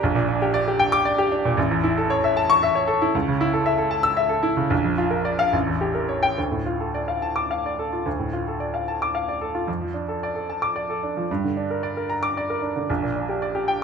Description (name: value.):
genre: classical, virtuoso piano study.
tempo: 75 BPM (dotted quarters).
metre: 6/8.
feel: rubato.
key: D minor.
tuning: A4 = 441 Hz.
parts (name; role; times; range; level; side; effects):
clear baby grand piano; solo; 0.0-13.8 s; A1 to E6; -20 LUFS; equal; none.
room: moderate large studio reverb, RT60 0.8 s.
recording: minimal, uncompressed stereo recording.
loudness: -20 LUFS.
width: side -6 dB against mid.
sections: 0.0-8.1 A section; 8.1-13.8 A section.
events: none.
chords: 0.0 Gm/Bb; 1.6 A; 3.1 A/C#; 4.7 Bb; 5.5 A7b9; 6.4 Dm; 9.7 Dm/F; 11.3 Gm; 12.9 Gm/Bb.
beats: | 0.00 0.78 | 1.57 2.36 | 3.14 3.92 | 4.72 5.53 | 6.37 7.21 | 8.06 8.88 | 9.68 10.48 | 11.29 12.09 | 12.89 13.68.